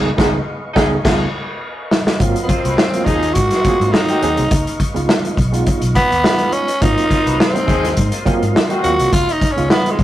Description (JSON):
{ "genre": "funk", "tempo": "104 BPM", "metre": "4/4", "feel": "straight", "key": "Ab mixolydian", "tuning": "A4 = 440 Hz", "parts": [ { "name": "clear horn section", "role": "second line", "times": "0.0-8.9 s", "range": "Eb3 to C5", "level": "-24 LUFS", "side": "left 2 dB", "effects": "none" }, { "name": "tonewheel organ", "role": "sustained chords", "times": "0.0-10.0 s", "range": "Bb4 to Db6", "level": "-30 LUFS", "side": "left 1 dB", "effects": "slow rotary speaker, overdrive, chorus vibrato" }, { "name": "barky reed electric piano", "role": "stabs", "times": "0.0-10.0 s", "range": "Gb3 to Ab4", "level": "-22 LUFS", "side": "right 3 dB", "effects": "overdrive, fast tremolo" }, { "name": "vintage muted fingered electric bass", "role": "bass", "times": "0.0-10.0 s", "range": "Ab1 to Ab2", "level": "-22 LUFS", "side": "equal", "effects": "none" }, { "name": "vintage drum kit", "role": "drums", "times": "0.2-10.0 s", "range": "crash cymbal, hi-hat, kick drum, snare drum", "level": "-17 LUFS", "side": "equal", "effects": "none" }, { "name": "growling tenor saxophone", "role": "melody", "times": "2.4-10.0 s", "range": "Ab3 to Gb4", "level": "-17 LUFS", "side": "equal", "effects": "none" } ], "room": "moderate stone room reverb, RT60 1.2 s", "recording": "rough rehearsal-room recording, warm saturation", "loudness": "-13 LUFS", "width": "side -13 dB against mid", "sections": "0.0-2.2 A section; 2.2-10.0 B section", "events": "band accent 0.0-2.2; drum fill 1.1-2.2; tenor saxophone solo 2.2-10.0", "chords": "0.0 Db9; 2.2 Ab13; 4.5 Db9; 6.8 Ab13; 9.1 Db9" }